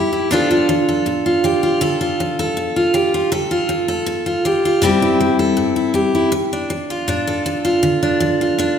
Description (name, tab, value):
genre	country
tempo	160 BPM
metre	4/4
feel	straight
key	D minor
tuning	A4 = 440 Hz
part	picked steel-string acoustic guitar	solo	0.0-8.8 s	G2 to A4	-15 LUFS	equal	none
room	wet scoring stage reverb, RT60 1.6 s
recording	recorded in a church or concert hall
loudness	-15 LUFS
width	side -8 dB against mid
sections	0.0-6.3 A section; 6.3-8.8 B section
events	none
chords	0.3 Dm; 4.8 C; 6.3 Dm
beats	| 0.30 0.68 1.06 1.43 | 1.81 2.19 2.56 2.94 | 3.31 3.69 4.06 4.44 | 4.82 5.19 5.57 5.94 | 6.32 6.70 7.07 7.45 | 7.82 8.20 8.57